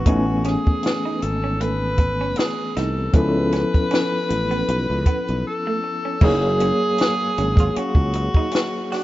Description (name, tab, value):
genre	R&B, neo-soul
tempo	78 BPM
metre	4/4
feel	swing 55% on 16ths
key	unclear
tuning	A4 = 443 Hz
part	clear tenor saxophone	melody	0.0-9.0 s	D4 to B4	-25 LUFS	equal	none
part	barky tine electric piano	accompaniment	0.0-9.0 s	E3 to G#5	-24 LUFS	left 1 dB	overdrive, fast tremolo
part	sustaining fretless electric bass	bass	0.0-8.3 s	F#1 to C#2	-23 LUFS	equal	none
part	electric guitar through a small old amp	second line	0.1-9.0 s	A3 to F#4	-31 LUFS	right 4 dB	spring reverb, tape echo
part	compact cocktail drum kit	drums	0.1-9.0 s	crash cymbal, hi-hat, kick drum, snare drum	-19 LUFS	equal	none
room	light reverb, small room ambience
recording	rough home demo mix, nothing above 7.6 kHz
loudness	-18 LUFS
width	side -16 dB against mid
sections	0.0-6.2 A section; 6.2-9.0 B section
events	break 5.4-6.2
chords	0.1 Amaj9; 3.1 C#7alt; 6.2 F#maj9